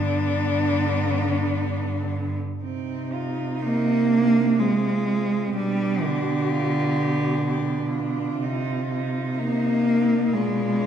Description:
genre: classical, lyrical piece for cello ensemble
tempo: 62 BPM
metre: 3/4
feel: rubato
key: C minor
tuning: A4 = 440 Hz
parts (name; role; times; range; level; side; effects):
- rich cello; melody; 0.0-10.9 s; D4 to G4; -30 LUFS; left 5 dB; none
- rich cello; second line; 0.0-10.9 s; B3 to G4; -32 LUFS; right 7 dB; none
- rich cello; accompaniment; 0.0-10.9 s; D3 to Bb3; -23 LUFS; equal; none
- rich cello; bass; 0.0-10.9 s; G2 to C3; -28 LUFS; right 2 dB; none
room: wet recital hall reverb, RT60 1.4 s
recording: dark, warm production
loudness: -21 LUFS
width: side -9 dB against mid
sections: 0.0-2.6 A section; 2.6-10.9 B section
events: none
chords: 0.0 G; 2.6 Cm; 4.6 Fm/C; 5.6 G7/B; 8.4 Cm; 10.3 Bdim7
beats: 0.58 1.60 | 2.63 3.62 4.59 | 5.56 6.51 7.47 | 8.42 9.38 10.33

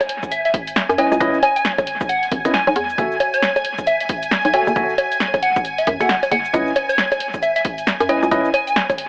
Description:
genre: UK garage, two-step garage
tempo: 135 BPM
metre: 4/4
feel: swing 61% on 16ths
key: C# minor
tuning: A4 = 441 Hz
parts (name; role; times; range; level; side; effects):
- soft string machine; sustained chords; 0.0-9.1 s; G#5; -27 LUFS; equal; ensemble chorus, sidechain pumping
- punchy analog drum machine; drums; 0.0-9.1 s; bongos, cabasa, hi-hat, rim click, snare drum; -24 LUFS; equal; dub echo
- electronic kick drum; drums; 0.2-9.0 s; none; -30 LUFS; equal; none
- plucky unison lead; melody; 0.3-8.8 s; C#5 to G#5; -23 LUFS; equal; dub echo
- hollow knocking FM bass; bass; 0.9-8.4 s; E1 to F#2; -23 LUFS; equal; none
- tine electric piano; stabs; 1.0-8.5 s; C#4 to G#5; -24 LUFS; equal; dub echo
room: moderate spring reverb, RT60 1.2 s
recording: echo-heavy mix, AM radio sound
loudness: -18 LUFS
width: mono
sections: 0.0-9.1 A section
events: none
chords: 0.0 C#m9; 3.0 F#m9; 6.5 C#m9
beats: 0.32 0.76 | 1.20 1.65 2.09 2.54 | 2.98 3.43 3.87 4.32 | 4.76 5.20 5.65 6.09 | 6.54 6.98 7.43 7.87 | 8.31 8.76

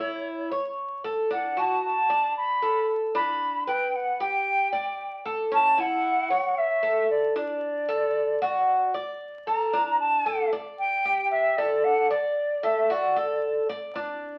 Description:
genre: latin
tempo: 114 BPM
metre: 4/4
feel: straight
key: D major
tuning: A4 = 441 Hz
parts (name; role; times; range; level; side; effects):
- mellow hollow silver concert flute; melody; 0.0-13.7 s; C#5 to B5; -27 LUFS; equal; none
- Cuban tres; arpeggios; 0.0-14.4 s; C#4 to D5; -30 LUFS; equal; none
room: wet studio reverb, RT60 0.8 s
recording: very old 78 rpm record, vinyl crackle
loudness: -25 LUFS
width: mono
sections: 0.0-9.7 A section; 9.7-14.4 B section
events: none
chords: 0.0 A; 1.3 D; 3.4 G; 5.5 A; 7.6 D; 9.7 Gsus2; 11.8 D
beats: 0.25 0.77 | 1.30 1.82 2.35 2.88 | 3.40 3.93 4.46 4.98 | 5.51 6.04 6.57 7.09 | 7.62 8.15 8.68 9.20 | 9.73 10.26 10.79 11.31 | 11.84 12.37 12.90 13.42 | 13.95

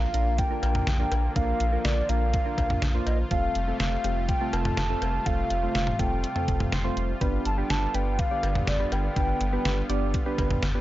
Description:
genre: synth-pop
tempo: 123 BPM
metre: 4/4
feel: straight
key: Bb major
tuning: A4 = 438 Hz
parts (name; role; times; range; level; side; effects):
- hollow clarinet-like synth lead; melody; 0.0-10.4 s; D5 to A5; -30 LUFS; equal; chorus, analog delay
- soft electric-piano-like synth keys; accompaniment; 0.0-10.8 s; A3 to C6; -32 LUFS; right 1 dB; chorus
- brassy analog pad; sustained chords; 0.0-10.8 s; C3 to F4; -35 LUFS; left 1 dB; chorus
- round analog bass; bass; 0.0-10.8 s; F1 to Bb1; -27 LUFS; equal; none
- impact; sound effects; 0.1-1.4 s; none; -44 LUFS; equal; none
- detuned 8-bit digital drum machine; drums; 0.1-10.7 s; cowbell, hi-hat, kick drum, snare drum, toms; -29 LUFS; equal; none
room: digital ambience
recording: dry, gritty hardware recording, nothing above 7.5 kHz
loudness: -23 LUFS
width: side -15 dB against mid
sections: 0.0-10.8 A section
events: impact 0.0-1.4; synth keys fill 6.5-7.2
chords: 0.0 Bb; 3.3 Fadd9; 7.2 G7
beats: 0.38 0.87 | 1.36 1.85 2.33 2.82 | 3.31 3.80 4.29 4.77 | 5.26 5.75 6.24 6.72 | 7.21 7.70 8.19 8.68 | 9.16 9.65 10.14 10.63

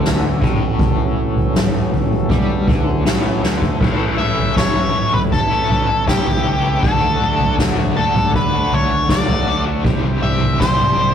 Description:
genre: psychedelic rock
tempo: 80 BPM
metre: 4/4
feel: straight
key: A mixolydian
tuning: A4 = 441 Hz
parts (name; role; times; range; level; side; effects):
- tonewheel organ; sustained chords; 0.0-11.1 s; E3 to A5; -27 LUFS; right 2 dB; slow rotary speaker
- overdriven semi-hollow guitar; riff; 0.0-11.1 s; A2 to G4; -24 LUFS; left 2 dB; tremolo
- fuzz picked electric bass; bass; 0.0-11.1 s; A1 to G2; -23 LUFS; equal; overdrive
- hand-pumped harmonium; drone; 0.0-3.9 s; A2 to E3; -30 LUFS; left 3 dB; none
- soft-mallet drum kit; drums; 0.0-11.0 s; crash cymbal, kick drum, snare drum, toms; -17 LUFS; equal; none
- octave-fuzz lead guitar; melody; 4.2-11.1 s; G4 to E5; -18 LUFS; left 1 dB; distortion
room: moderate small room reverb, RT60 0.5 s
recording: rough rehearsal-room recording, warm saturation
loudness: -14 LUFS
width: side -8 dB against mid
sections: 0.0-3.8 A section; 3.8-11.1 B section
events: drum fill 3.4-3.8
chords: 0.0 A; 3.8 Aadd9; 6.8 D; 9.8 Cadd9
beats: 0.04 | 0.79 1.54 2.30 3.05 | 3.80 4.56 5.31 6.07 | 6.82 7.58 8.33 9.09 | 9.85 10.60

